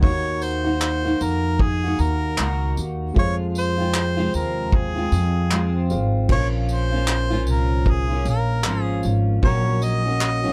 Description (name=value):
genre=acoustic pop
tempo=76 BPM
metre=4/4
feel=swing 60% on 16ths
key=Bb minor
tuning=A4 = 440 Hz
part: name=warm harmonica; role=melody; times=0.0-10.5 s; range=Ab4 to Eb5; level=-29 LUFS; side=equal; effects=none
part: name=dark grand piano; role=accompaniment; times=0.0-10.5 s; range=Ab3 to Bb5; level=-36 LUFS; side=equal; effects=none
part: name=fingerpicked steel-string acoustic guitar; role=accompaniment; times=0.0-10.5 s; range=F2 to Gb4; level=-28 LUFS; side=equal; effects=double-tracked
part: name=upright bass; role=bass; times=0.0-10.5 s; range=Ab1 to F2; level=-25 LUFS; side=equal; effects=none
part: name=loose indie drum kit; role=drums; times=0.0-10.4 s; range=crash cymbal, handclaps, kick drum, tambourine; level=-24 LUFS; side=equal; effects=none
room=little or no reverb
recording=none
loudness=-21 LUFS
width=mono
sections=0.0-6.3 A section; 6.3-10.5 A section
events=none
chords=0.0 Ebm; 3.2 Fm; 6.3 Bbm; 9.4 Gb